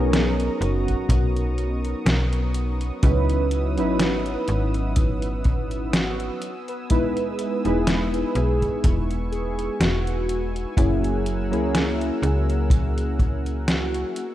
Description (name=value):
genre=vaporwave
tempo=62 BPM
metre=4/4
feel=swing 55% on 16ths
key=unclear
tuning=A4 = 440 Hz
part: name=warm velvety synth lead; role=melody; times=0.0-14.3 s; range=F#4 to B4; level=-31 LUFS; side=equal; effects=chorus, tape echo
part: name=warbly lo-fi synth keys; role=accompaniment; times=0.0-14.2 s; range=F#3 to B4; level=-25 LUFS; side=equal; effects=analog chorus, vintage 12-bit sampler grit, tape echo
part: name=lush unison pad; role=sustained chords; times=0.0-14.3 s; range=B3 to E6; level=-36 LUFS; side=left 1 dB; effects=chorus, vintage 12-bit sampler grit
part: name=slap-like FM bass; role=bass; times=0.0-14.0 s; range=E1 to C#2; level=-24 LUFS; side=equal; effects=none
part: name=detuned 8-bit digital drum machine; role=drums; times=0.1-14.3 s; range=hi-hat, snare drum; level=-25 LUFS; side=equal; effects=none
part: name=kick drum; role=drums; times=0.9-13.4 s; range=none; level=-22 LUFS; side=equal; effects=none
room=light reverb, digital ambience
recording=rough home demo mix, cassette tape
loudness=-20 LUFS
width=side -13 dB against mid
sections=0.0-14.3 A section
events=none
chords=0.0 Bmaj9; 3.0 C#m11; 6.4 Emaj7; 10.8 F#9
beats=0.13 1.10 2.06 | 3.03 4.00 4.97 5.94 | 6.90 7.87 8.84 9.81 | 10.77 11.74 12.71 13.68